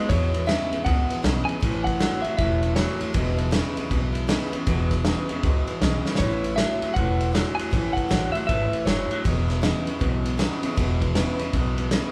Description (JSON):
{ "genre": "rockabilly", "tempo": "157 BPM", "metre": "4/4", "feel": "swing 63% on 8ths", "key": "E major", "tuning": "A4 = 444 Hz", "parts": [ { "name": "electric guitar through a small old amp", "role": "melody", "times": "0.0-3.1, 6.2-9.2 s", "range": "C#5 to G#5", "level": "-30 LUFS", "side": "equal", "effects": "none" }, { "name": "picked steel-string acoustic guitar", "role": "accompaniment", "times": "0.0-12.1 s", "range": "E2 to E4", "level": "-34 LUFS", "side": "equal", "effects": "none" }, { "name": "electric guitar through a small old amp", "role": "riff", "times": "0.0-12.1 s", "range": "E2 to F#3", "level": "-31 LUFS", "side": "equal", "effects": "none" }, { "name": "upright bass", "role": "bass", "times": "0.1-12.0 s", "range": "E1 to E2", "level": "-29 LUFS", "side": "equal", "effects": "none" }, { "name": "vintage drum kit", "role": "drums", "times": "0.1-12.0 s", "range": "kick drum, ride cymbal, snare drum", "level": "-28 LUFS", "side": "equal", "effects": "none" } ], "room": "moderate large studio reverb, RT60 1.2 s", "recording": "band playing live in one room", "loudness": "-24 LUFS", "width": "mono", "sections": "0.1-12.1 A section", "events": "drum fill 6.0", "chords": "0.1 E; 1.6 A; 3.1 E; 6.2 A; 9.2 E" }